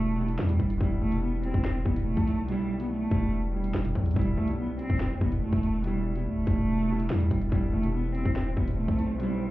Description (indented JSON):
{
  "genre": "hip hop, drill",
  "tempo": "143 BPM",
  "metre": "4/4",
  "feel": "half-time",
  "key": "E minor",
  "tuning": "A4 = 439 Hz",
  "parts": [
    { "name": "dark cello", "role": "melody", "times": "0.0-9.5 s", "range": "F#3 to C4", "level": "-30 LUFS", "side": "right 1 dB", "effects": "none" },
    { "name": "warm concert grand piano", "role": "accompaniment", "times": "0.0-9.5 s", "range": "B2 to E4", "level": "-33 LUFS", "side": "equal", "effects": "none" },
    { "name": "distorted 808-style bass", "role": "bass", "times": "0.0-9.5 s", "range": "E1 to E2", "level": "-30 LUFS", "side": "equal", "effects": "distortion" },
    { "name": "drill drum kit", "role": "drums", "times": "0.3-9.3 s", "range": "hi-hat, kick drum, snare drum", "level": "-28 LUFS", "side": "equal", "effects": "none" },
    { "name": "swell", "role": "sound effects", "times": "8.1-9.5 s", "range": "none", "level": "-39 LUFS", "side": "right 2 dB", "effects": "none" }
  ],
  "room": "little or no reverb",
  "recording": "heard muffled through a wall, club reverb, EQ",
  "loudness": "-25 LUFS",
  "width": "side -16 dB against mid",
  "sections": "0.0-9.5 A section",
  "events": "swell 8.1-9.5",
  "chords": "0.0 Em"
}